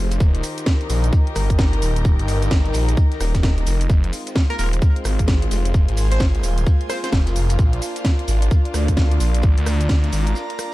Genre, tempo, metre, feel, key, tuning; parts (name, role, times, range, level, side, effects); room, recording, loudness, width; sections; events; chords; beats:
bass house; 130 BPM; 4/4; swing 62% on 16ths; F dorian; A4 = 440 Hz
warm chamber string section; sustained chords; 0.0-10.7 s; Eb3 to Bb4; -30 LUFS; left 2 dB; sidechain pumping
phased detuned saw bass; bass; 0.0-10.3 s; Eb1 to D2; -19 LUFS; equal; phaser, tube saturation, sidechain pumping
airy breathy pad; texture; 0.0-10.7 s; Eb4 to Bb5; -31 LUFS; right 2 dB; chorus, sidechain pumping
garage drum kit; drums; 0.1-10.7 s; cabasa, hi-hat, rim click, snare drum; -28 LUFS; equal
vintage drum kit; drums; 0.1-10.7 s; hi-hat, shaker, snare drum; -40 LUFS; equal
electronic kick drum; drums; 0.2-10.0 s; -17 LUFS; equal
plucky unison lead; melody; 4.5-7.1 s; Bb4 to C5; -29 LUFS; right 1 dB; digital delay
small room ambience; dark, warm production; -16 LUFS; side -18 dB against mid
0.0-10.7 A section
break 10.4-10.7
0.2 Eb; 3.9 Fm; 7.6 Bb
| 0.20 0.67 1.13 1.59 | 2.05 2.51 2.97 3.44 | 3.90 4.36 4.82 5.28 | 5.74 6.20 6.67 7.13 | 7.59 8.05 8.51 8.97 | 9.44 9.90 10.36